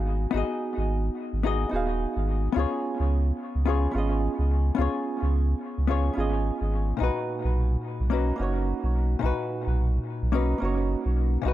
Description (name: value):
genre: sunset chillout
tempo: 108 BPM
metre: 4/4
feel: swing 58% on 16ths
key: B lydian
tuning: A4 = 440 Hz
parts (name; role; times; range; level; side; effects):
- hollow-body jazz guitar; accompaniment; 0.0-11.5 s; A#2 to E#5; -28 LUFS; moving between left 6 dB and right 4 dB; auto-pan, dub echo
- warm sub bass; bass; 0.0-11.5 s; D#1 to C#2; -25 LUFS; equal; none
room: light reverb, digital ambience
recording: echo-heavy mix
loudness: -24 LUFS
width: side -14 dB against mid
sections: 0.0-11.5 A section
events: none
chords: 0.0 G#m7; 2.6 C#7; 7.0 Bmaj9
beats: | 0.34 0.89 1.45 2.00 | 2.56 3.12 3.67 4.23 | 4.78 5.34 5.89 6.45 | 7.00 7.56 8.12 8.67 | 9.23 9.78 10.34 10.89 | 11.45